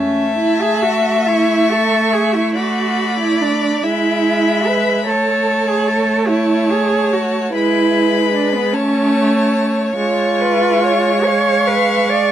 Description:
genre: classical, slow romantic movement for string quartet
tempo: 49 BPM (dotted quarters)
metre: 6/8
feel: uneven beats, rubato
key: A major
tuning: A4 = 442 Hz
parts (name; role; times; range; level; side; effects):
- rich violin; melody; 0.0-12.3 s; A5 to C#6; -22 LUFS; left 6 dB; none
- rich violin; second line; 0.0-12.3 s; B4 to E#5; -19 LUFS; left 2 dB; none
- rich viola; accompaniment; 0.0-12.3 s; G#3 to A3; -20 LUFS; right 2 dB; none
- rich cello; bass; 0.0-12.3 s; B3 to D5; -17 LUFS; right 3 dB; none
room: light reverb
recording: none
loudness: -13 LUFS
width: side -10 dB against mid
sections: 0.0-12.3 A section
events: none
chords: 0.0 A; 2.6 Bm7/A; 3.8 E/G#; 5.1 A; 7.5 E7/G#; 8.7 A; 10.0 C#7/G#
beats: 1.28 | 2.57 3.84 | 5.08 6.29 | 7.55 8.74 | 9.97 11.26

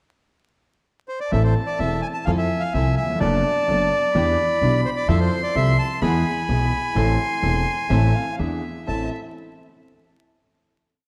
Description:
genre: tango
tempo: 128 BPM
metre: 4/4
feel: rubato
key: A harmonic minor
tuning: A4 = 440 Hz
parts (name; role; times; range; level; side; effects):
- bandoneon; melody; 1.1-9.1 s; C5 to A5; -26 LUFS; equal; none
- warm violin; second line; 1.3-9.1 s; E5 to C6; -32 LUFS; equal; none
- bright concert grand piano; accompaniment; 1.3-9.1 s; E1 to A4; -28 LUFS; equal; none
- rich studio string section; stabs; 1.3-9.1 s; B3 to A4; -36 LUFS; equal; none
- upright bass; bass; 1.3-9.1 s; E1 to F2; -24 LUFS; equal; none
room: moderate concert hall reverb, RT60 2.1 s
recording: vinyl crackle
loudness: -21 LUFS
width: mono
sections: 0.0-1.3 pickup bar; 1.3-8.9 A section; 8.9-10.8 final chord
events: none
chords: 0.0 N.C.; 1.3 Am; 2.3 Fmaj7; 3.2 Bm7/F#; 4.2 Em7; 5.1 Fmaj7; 6.0 E; 7.0 Am; 8.4 E7; 8.9 Am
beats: 0.39 0.85 | 1.32 1.80 2.27 2.74 | 3.21 3.69 4.15 4.62 | 5.09 5.55 6.02 6.49 | 6.96 7.43 7.90 8.39 | 8.88

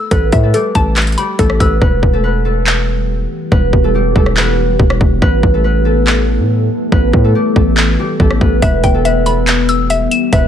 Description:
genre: hip hop, trap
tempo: 141 BPM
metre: 4/4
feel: half-time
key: E minor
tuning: A4 = 436 Hz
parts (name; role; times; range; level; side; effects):
- concert harp; melody; 0.0-10.5 s; G3 to B4; -17 LUFS; right 1 dB; none
- mallet-like synth pluck; accompaniment; 0.0-1.8, 8.6-10.5 s; A4 to E7; -17 LUFS; left 4 dB; chorus
- hard-hitting 808-style bass; bass; 0.1-10.5 s; E1 to A2; -15 LUFS; equal; none
- trap drum kit; drums; 0.1-10.4 s; handclaps, hi-hat, kick drum, rim click; -14 LUFS; equal; vintage 12-bit sampler grit
- deep dark ambient pad; sustained chords; 2.7-10.5 s; E3 to A4; -19 LUFS; left 3 dB; chorus, built-in reverb
room: digital ambience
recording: none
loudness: -10 LUFS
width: side -9 dB against mid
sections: 0.0-10.5 A section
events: hi-hats muted 1.8-8.6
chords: 0.0 Asus2; 1.8 Em; 5.2 Asus2; 8.6 Em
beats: | 0.11 0.54 0.96 1.39 | 1.82 2.24 2.67 3.09 | 3.52 3.94 4.37 4.79 | 5.22 5.64 6.07 6.50 | 6.92 7.35 7.77 8.20 | 8.62 9.05 9.47 9.90 | 10.33

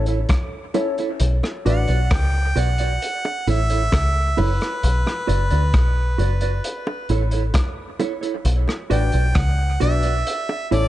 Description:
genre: dub reggae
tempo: 66 BPM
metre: 4/4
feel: straight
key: B minor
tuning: A4 = 438 Hz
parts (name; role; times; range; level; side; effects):
- dark upright piano; stabs; 0.0-1.8, 8.9-10.9 s; C#4 to D5; -27 LUFS; left 6 dB; dub echo
- deep dub picked electric bass; bass; 0.0-10.9 s; F#1 to D2; -19 LUFS; equal; none
- mellow electric guitar; accompaniment; 0.1-10.8 s; E4 to D5; -28 LUFS; right 7 dB; dub echo
- crunchy breakbeat drum kit; drums; 0.1-10.9 s; hi-hat, kick drum, rim click; -24 LUFS; equal; none
- bongos; percussion; 0.3-10.7 s; none; -32 LUFS; right 1 dB; dub echo
- clear harmonica; melody; 1.7-10.9 s; B4 to G5; -26 LUFS; right 1 dB; dub echo
room: light reverb, small room ambience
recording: nothing above 10.3 kHz, faint mains hum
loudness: -18 LUFS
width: side -14 dB against mid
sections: 0.0-10.9 A section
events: break 0.0-1.2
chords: 0.0 A; 1.2 Bm; 3.0 A; 4.8 Bm; 6.6 A; 8.4 Bm; 10.3 A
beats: 0.29 | 1.20 2.11 3.01 3.92 | 4.83 5.73 6.64 7.54 | 8.45 9.35 10.26

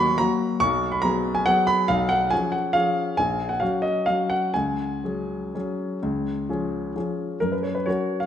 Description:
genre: classical, piano waltz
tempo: 118-146 BPM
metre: 3/4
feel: rubato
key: F# major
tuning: A4 = 445 Hz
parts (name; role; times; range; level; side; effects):
- warm grand piano; solo; 0.0-8.3 s; A#1 to C#6; -21 LUFS; equal; none
room: moderate recital hall reverb, RT60 1.5 s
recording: none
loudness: -21 LUFS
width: side -9 dB against mid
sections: 0.0-7.4 A section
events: none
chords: 0.0 D#m; 0.6 G#m7/B; 1.9 C#7/B; 3.2 F#/A#; 4.6 C#sus4; 6.0 C#; 7.4 F#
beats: 0.19 | 0.62 1.04 1.47 | 1.90 2.32 2.75 | 3.19 3.62 4.08 | 4.55 5.04 5.54 | 6.02 6.49 6.95 | 7.42 7.87

